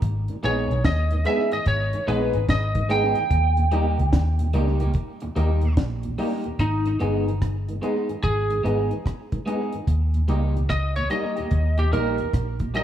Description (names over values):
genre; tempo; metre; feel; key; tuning
roots reggae; 73 BPM; 4/4; swing 65% on 16ths; G# harmonic minor; A4 = 441 Hz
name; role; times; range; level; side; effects
vintage muted fingered electric bass; bass; 0.0-12.8 s; G1 to D#2; -22 LUFS; equal; none
deep reggae drum kit; drums; 0.0-12.8 s; hi-hat, kick drum, rim click, snare drum; -25 LUFS; equal; tape echo
tonewheel organ; accompaniment; 0.3-12.8 s; D#2 to D#4; -33 LUFS; left 1 dB; slow rotary speaker
electric guitar at the edge of break-up; accompaniment; 0.4-12.8 s; G3 to G#4; -30 LUFS; right 3 dB; spring reverb, tape echo
warm grand piano; stabs; 0.4-12.8 s; D#4 to D#5; -33 LUFS; left 7 dB; none
lightly driven lead guitar; melody; 0.5-12.8 s; D#4 to G5; -26 LUFS; right 1 dB; tape echo
room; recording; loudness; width
light reverb, small room reverb; rough home demo mix; -20 LUFS; side -10 dB against mid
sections
0.0-6.6 A section; 6.6-12.8 B section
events
lead electric guitar solo 6.6-12.8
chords
0.0 G#m; 3.3 D#; 6.6 G#m; 9.9 D#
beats
| 0.02 0.84 1.66 2.48 | 3.31 4.13 4.95 5.77 | 6.59 7.41 8.23 9.05 | 9.87 10.70 11.52 12.34